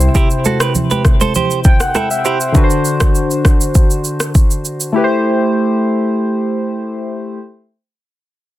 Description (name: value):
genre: afrobeats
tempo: 100 BPM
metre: 4/4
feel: straight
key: A dorian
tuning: A4 = 439 Hz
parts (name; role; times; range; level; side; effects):
- soft electric-piano-like synth keys; accompaniment; 0.0-7.4 s; C3 to G5; -16 LUFS; left 1 dB; chorus
- afro-pop drum kit; drums; 0.0-4.9 s; kick drum, rim click, shaker; -12 LUFS; equal; soft clipping on snare
- direct-recorded clean electric guitar; riff; 0.2-2.4 s; E4 to C5; -19 LUFS; right 6 dB; ping-pong delay
- congas; percussion; 0.5-2.1 s; none; -20 LUFS; right 1 dB; none
room: light reverb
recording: dense, heavily limited modern master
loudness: -12 LUFS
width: side -15 dB against mid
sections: 0.0-7.3 A section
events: synth keys fill 1.3-2.5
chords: 0.0 C; 2.5 D7; 4.9 Am7